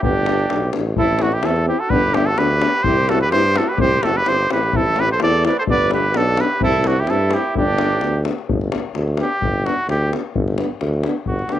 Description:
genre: balkan folk, Balkan brass band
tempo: 128 BPM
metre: 2/4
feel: straight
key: G major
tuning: A4 = 440 Hz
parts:
  - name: cornet with straight mute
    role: melody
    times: 0.0-11.6 s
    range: F#4 to D5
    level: -19 LUFS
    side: equal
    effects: cassette tape, plate reverb
  - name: warm trumpet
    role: second line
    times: 0.0-8.2 s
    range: D4 to B4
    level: -25 LUFS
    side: right 9 dB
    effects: cassette tape, plate reverb
  - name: clear euphonium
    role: accompaniment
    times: 0.0-11.6 s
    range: B3 to C4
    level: -28 LUFS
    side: right 8 dB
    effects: cassette tape, plate reverb
  - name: warm euphonium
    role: accompaniment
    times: 0.0-11.6 s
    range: D4 to E4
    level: -25 LUFS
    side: left 6 dB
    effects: cassette tape, plate reverb
  - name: warm tuba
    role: bass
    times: 0.0-11.6 s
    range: F#1 to G2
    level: -21 LUFS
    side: equal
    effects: none
  - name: davul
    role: percussion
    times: 0.0-11.6 s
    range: none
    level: -24 LUFS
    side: left 5 dB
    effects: none
room: moderate booth ambience, RT60 0.2 s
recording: home recording on cassette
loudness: -16 LUFS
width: side -12 dB against mid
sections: 1.0-8.5 A section; 8.5-11.6 B section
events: cornet solo 8.5-11.6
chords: 0.0 G; 1.0 Am; 1.9 G; 2.9 C; 4.7 Am; 5.7 G; 6.6 C; 7.6 G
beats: | 0.05 0.52 | 0.98 1.45 | 1.92 2.39 | 2.86 3.33 | 3.80 4.27 | 4.74 5.21 | 5.68 6.15 | 6.62 7.08 | 7.55 8.02 | 8.49 8.95 | 9.42 9.88 | 10.35 10.81 | 11.28

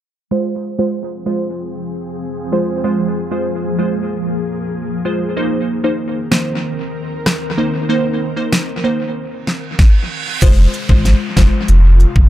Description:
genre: dancehall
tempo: 95 BPM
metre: 4/4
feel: straight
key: F minor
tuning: A4 = 440 Hz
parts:
  - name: glassy wavetable pluck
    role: accompaniment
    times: 0.3-11.5 s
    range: Ab3 to C5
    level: -19 LUFS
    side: right 1 dB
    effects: chorus, low-pass filter, tape echo
  - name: ethereal airy pad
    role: sustained chords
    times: 1.2-12.3 s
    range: C3 to Bb4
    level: -23 LUFS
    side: left 1 dB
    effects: ensemble chorus, built-in reverb, tremolo, sidechain pumping, low-pass filter
  - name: pop drum kit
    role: drums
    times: 6.3-12.3 s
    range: crash cymbal, hi-hat, kick drum, rim click, snare drum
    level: -14 LUFS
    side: equal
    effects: tape echo
  - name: reverse cymbal and downlifter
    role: sound effects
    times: 9.5-12.3 s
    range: none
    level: -26 LUFS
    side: right 4 dB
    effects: none
  - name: warm sub bass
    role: bass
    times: 10.4-12.3 s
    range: F1 to Ab1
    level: -10 LUFS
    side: equal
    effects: none
room: digital ambience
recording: echo-heavy mix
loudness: -14 LUFS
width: side -13 dB against mid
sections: 0.3-10.4 A section; 10.4-12.3 B section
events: filter sweep 0.3-10.4; reverse cymbal 9.5-10.4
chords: 0.3 Fm; 5.4 Cm7; 10.4 Fm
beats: | 0.32 0.95 1.58 2.21 | 2.84 3.47 4.11 4.74 | 5.37 6.00 6.63 7.26 | 7.89 8.53 9.16 9.79 | 10.42 11.05 11.68

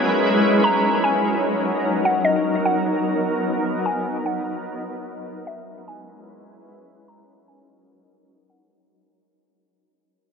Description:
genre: hip hop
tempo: 149 BPM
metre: 4/4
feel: half-time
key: unclear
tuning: A4 = 440 Hz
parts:
  - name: mallet-like synth pluck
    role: melody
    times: 0.0-8.7 s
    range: D#5 to A#5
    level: -24 LUFS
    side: equal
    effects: chorus, low-pass filter, ping-pong delay
  - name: shimmering ambient pad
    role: sustained chords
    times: 0.0-8.7 s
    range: F#3 to B4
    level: -20 LUFS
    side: equal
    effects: chorus, built-in reverb, low-pass filter
room: wet lush hall reverb, RT60 2.5 s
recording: none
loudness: -18 LUFS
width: side -6 dB against mid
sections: 0.0-8.7 A section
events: fade-out 0.0-8.7; filter sweep 0.0-8.7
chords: 0.0 C#m7; 0.6 D#m7; 2.2 Bmaj7; 5.5 C#m7; 7.1 D#m7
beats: 0.23 | 0.64 1.04 1.44 1.84 | 2.25 2.65 3.05 3.46 | 3.86 4.26 4.66 5.07 | 5.47 5.87 6.28 6.68 | 7.08 7.48 7.89 8.29

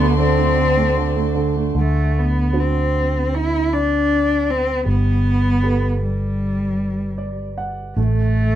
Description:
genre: acoustic folk-pop ballad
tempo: 77 BPM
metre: 4/4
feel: straight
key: G major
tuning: A4 = 438 Hz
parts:
  - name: rich cello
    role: melody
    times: 0.0-8.6 s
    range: G3 to E4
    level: -20 LUFS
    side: left 1 dB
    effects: none
  - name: warm grand piano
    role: accompaniment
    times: 0.0-8.6 s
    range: D3 to F#5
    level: -24 LUFS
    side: right 4 dB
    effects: none
  - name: warm chamber string section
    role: sustained chords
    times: 0.0-1.7 s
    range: F#4 to C6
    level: -28 LUFS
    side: left 5 dB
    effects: none
  - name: fingered electric bass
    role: bass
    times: 0.0-8.6 s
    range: G1 to D2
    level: -20 LUFS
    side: equal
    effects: none
room: moderate studio reverb, RT60 0.5 s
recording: minimal, uncompressed stereo recording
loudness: -16 LUFS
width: side -11 dB against mid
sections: 0.0-1.8 A section; 1.8-8.6 B section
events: none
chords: 0.0 D5; 1.8 D7; 4.9 Gadd9; 8.0 N.C.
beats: 0.20 0.98 | 1.76 2.54 3.31 4.09 | 4.87 5.64 6.42 7.20 | 7.98

